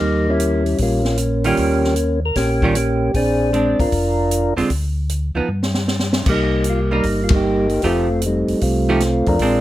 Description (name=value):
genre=soul jazz organ trio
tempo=153 BPM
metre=4/4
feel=swing 67% on 8ths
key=unclear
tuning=A4 = 438 Hz
part: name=percussive tonewheel organ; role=melody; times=0.0-9.6 s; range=G3 to Bb4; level=-18 LUFS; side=equal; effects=slow rotary speaker
part: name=mellow tonewheel organ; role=bass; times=0.0-9.6 s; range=F1 to G2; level=-21 LUFS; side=equal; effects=chorus vibrato, slow rotary speaker
part: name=open jazz drum kit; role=drums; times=0.4-9.5 s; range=crash cymbal, hi-hat, kick drum, ride cymbal, snare drum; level=-23 LUFS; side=equal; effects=none
part: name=archtop guitar, miked and amplified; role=accompaniment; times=1.4-9.6 s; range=D3 to G4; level=-20 LUFS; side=right 3 dB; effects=none
room=light reverb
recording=none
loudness=-16 LUFS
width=side -14 dB against mid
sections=0.0-9.6 A section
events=drum fill 5.5-6.3; band accent 7.2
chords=0.0 Eb9; 3.1 Bb9; 4.7 Dm6; 5.5 N.C.; 6.3 Cm7; 7.8 F9